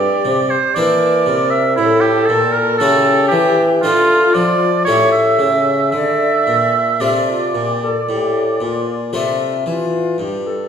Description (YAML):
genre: classical, baroque-style sonata movement with continuo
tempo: 55-59 BPM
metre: 4/4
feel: straight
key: D minor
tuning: A4 = 443 Hz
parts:
  - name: mellow alto recorder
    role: melody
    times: 0.0-10.7 s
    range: F4 to E5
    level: -20 LUFS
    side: left 6 dB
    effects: none
  - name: clear oboe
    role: second line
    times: 0.0-9.1 s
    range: E4 to E5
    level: -16 LUFS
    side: right 4 dB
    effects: none
  - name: harpsichord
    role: accompaniment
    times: 0.0-10.7 s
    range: G2 to G4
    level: -22 LUFS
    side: left 2 dB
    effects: none
  - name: dark bassoon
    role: bass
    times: 0.0-10.7 s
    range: G2 to F3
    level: -18 LUFS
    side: equal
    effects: none
room: wet recital hall reverb, RT60 1.4 s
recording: heard from further back in the room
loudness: -13 LUFS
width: side -7 dB against mid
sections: 0.0-10.2 A section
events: none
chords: 0.0 Em7b5/G; 1.8 A; 3.8 Dm; 4.9 A7; 5.9 Dm